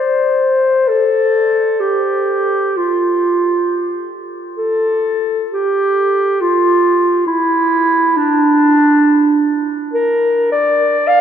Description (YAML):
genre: classical, free, expressive piece for unaccompanied clarinet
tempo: free time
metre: none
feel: none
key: F major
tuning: A4 = 440 Hz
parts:
  - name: mellow clarinet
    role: solo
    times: 0.0-11.2 s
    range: D4 to F5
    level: -12 LUFS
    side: equal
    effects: none
room: wet cathedral reverb, RT60 6.0 s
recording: in a vast, echoing space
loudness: -12 LUFS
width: side -8 dB against mid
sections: 0.0-11.2 A section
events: none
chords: none